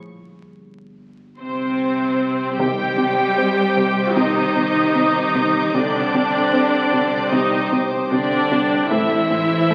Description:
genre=cinematic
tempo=76 BPM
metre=4/4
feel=straight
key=C minor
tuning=A4 = 440 Hz
part: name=deep rumbling drone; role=drone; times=0.0-9.7 s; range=G1 to C2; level=-42 LUFS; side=equal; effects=none
part: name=bright studio violin section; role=second line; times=1.4-9.7 s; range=C5 to G5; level=-27 LUFS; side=equal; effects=none
part: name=rich studio viola section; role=accompaniment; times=1.4-9.7 s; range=C4 to G4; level=-22 LUFS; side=equal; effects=none
part: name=warm studio cello section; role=bass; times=1.4-9.7 s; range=C3 to G3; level=-29 LUFS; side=equal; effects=none
part: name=warm studio violin section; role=melody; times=2.6-9.7 s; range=C5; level=-32 LUFS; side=equal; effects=none
part: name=dark trombone section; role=sustained chords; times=2.6-9.2 s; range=none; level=barely audible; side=none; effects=none
part: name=glass harmonica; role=sustained chords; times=2.9-9.7 s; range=G4 to G5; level=-32 LUFS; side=equal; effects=none
part: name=mellow French horn section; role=sustained chords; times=2.6-9.2 s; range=C4 to A4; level=-32 LUFS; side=equal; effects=none
part: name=plucky analog bass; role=riff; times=2.6-9.7 s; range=A2 to C4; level=-26 LUFS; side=equal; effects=none
part: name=rich studio double bass section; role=bass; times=2.6-9.7 s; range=A1 to C2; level=-33 LUFS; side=equal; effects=none
part: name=timpani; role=percussion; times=2.6-3.7 s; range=C3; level=-38 LUFS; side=equal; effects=none
part: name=sub drop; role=sound effects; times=2.6-5.7 s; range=none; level=-44 LUFS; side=equal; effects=none
part: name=rich studio violin section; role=texture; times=2.6-8.5 s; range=D6 to G6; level=-35 LUFS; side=equal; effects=none
room=wet scoring stage reverb, RT60 1.8 s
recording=very old 78 rpm record, vinyl crackle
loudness=-19 LUFS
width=mono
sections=0.0-2.6 A section; 2.6-9.7 B section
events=break 0.0-2.6; impact 2.6-5.7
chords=0.0 Gsus4; 2.6 Cmadd9; 8.9 Am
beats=0.22 1.01 1.80 | 2.59 3.38 4.17 4.96 | 5.75 6.53 7.32 8.11 | 8.90 9.69

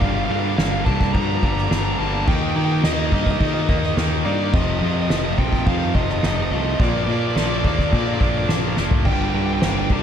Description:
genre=post-rock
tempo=106 BPM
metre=4/4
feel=straight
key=G minor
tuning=A4 = 440 Hz
part: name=biting overdriven guitar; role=melody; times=0.0-9.9 s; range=D5 to Bb5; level=-27 LUFS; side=right 3 dB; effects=digital delay
part: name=airy breathy pad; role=sustained chords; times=1.0-10.0 s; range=D4 to Bb5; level=-38 LUFS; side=left 2 dB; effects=none
part: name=clean electric guitar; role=arpeggios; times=0.0-10.0 s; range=F2 to Eb4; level=-30 LUFS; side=left 2 dB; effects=none
part: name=distorted electric guitar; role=riff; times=0.0-10.0 s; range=F2 to Eb4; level=-27 LUFS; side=right 15 dB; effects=overdrive
part: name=tight distorted guitar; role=riff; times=0.0-10.0 s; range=F2 to Eb4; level=-27 LUFS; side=left 14 dB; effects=distortion
part: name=growling fingered electric bass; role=bass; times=0.0-10.0 s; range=F1 to Eb3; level=-24 LUFS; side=equal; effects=overdrive
part: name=soft-mallet drum kit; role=drums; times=0.0-10.0 s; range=crash cymbal, kick drum, snare drum, toms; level=-21 LUFS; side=left 1 dB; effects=none
part: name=felt-muted upright piano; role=arpeggios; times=9.0-10.0 s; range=C5 to D5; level=-36 LUFS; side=right 2 dB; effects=digital delay
room=studio reverb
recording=dark, warm production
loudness=-17 LUFS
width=side -8 dB against mid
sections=0.0-10.0 A section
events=drum fill 8.8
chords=0.0 Gm7; 2.3 Eb; 4.5 F7; 6.8 Bbmaj7; 9.1 Gm7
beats=| 0.01 0.58 1.14 1.71 | 2.27 2.84 3.40 3.97 | 4.53 5.10 5.66 6.23 | 6.79 7.36 7.92 8.49 | 9.05 9.62

